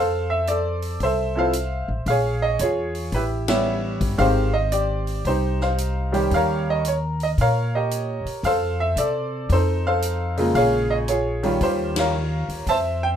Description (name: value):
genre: jazz piano trio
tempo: 113 BPM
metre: 4/4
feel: swing 67% on 8ths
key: unclear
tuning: A4 = 440 Hz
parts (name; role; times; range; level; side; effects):
- bright upright piano; melody; 0.0-13.2 s; Db3 to A5; -22 LUFS; right 1 dB; none
- upright bass; bass; 0.0-13.2 s; G1 to C3; -25 LUFS; equal; none
- swinging big-band drum kit; drums; 0.5-12.8 s; hi-hat, kick drum, ride cymbal, snare drum; -32 LUFS; left 2 dB; none
room: light reverb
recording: minimal, uncompressed stereo recording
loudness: -20 LUFS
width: side -9 dB against mid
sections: 0.0-13.2 A section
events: band accent 3.4, 11.9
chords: 0.0 Fmaj7; 2.1 Bbm7; 3.1 A9; 4.2 Abmaj7; 6.3 Eb7; 8.4 F; 9.5 F7; 10.6 Bbm7; 11.6 Eb9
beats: 0.48 1.01 1.54 | 2.07 2.60 3.13 3.66 | 4.19 4.72 5.25 5.79 | 6.32 6.85 7.38 7.91 | 8.44 8.97 9.49 10.03 | 10.55 11.08 11.61 12.14 | 12.67